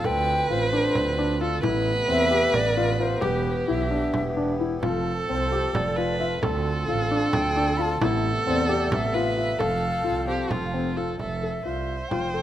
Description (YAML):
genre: contemporary instrumental, chamber music in an uneven meter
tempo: 264 BPM (eighths)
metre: 7/8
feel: straight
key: F lydian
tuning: A4 = 440 Hz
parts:
  - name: wooden flute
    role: melody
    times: 0.0-12.4 s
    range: B4 to B5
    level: -29 LUFS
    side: left 1 dB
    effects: none
  - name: rich viola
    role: second line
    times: 0.0-12.4 s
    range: F4 to C5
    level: -27 LUFS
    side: right 2 dB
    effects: none
  - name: hand-pumped harmonium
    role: sustained chords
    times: 0.0-11.2 s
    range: C3 to A4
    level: -33 LUFS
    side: left 1 dB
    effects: none
  - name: dark grand piano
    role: arpeggios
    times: 0.0-12.4 s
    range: C4 to A4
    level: -28 LUFS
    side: left 4 dB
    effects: none
  - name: rich double bass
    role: bass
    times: 0.0-12.4 s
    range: E1 to E2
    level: -29 LUFS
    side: right 4 dB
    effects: none
  - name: frame drum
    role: percussion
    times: 0.0-12.3 s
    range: none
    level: -30 LUFS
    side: right 2 dB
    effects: none
room: light reverb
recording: close, detailed microphones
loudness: -22 LUFS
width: side -12 dB against mid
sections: 0.0-11.2 A section; 11.2-12.4 B section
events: none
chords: 0.0 Dm7; 1.6 Amadd9; 3.2 Em; 4.8 F; 6.4 Dm7; 8.0 Amadd9; 9.6 F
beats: | 0.04 0.27 0.50 0.72 0.95 1.18 1.41 | 1.64 1.86 2.09 2.31 2.54 2.76 2.99 | 3.22 3.45 3.68 3.91 4.14 4.37 4.60 | 4.83 5.06 5.29 5.52 5.75 5.98 6.20 | 6.43 6.66 6.88 7.11 7.33 7.56 7.79 | 8.01 8.24 8.46 8.69 8.91 9.14 9.37 | 9.60 9.82 10.05 10.28 10.51 10.74 10.97 | 11.20 11.43 11.66 11.89 12.12 12.35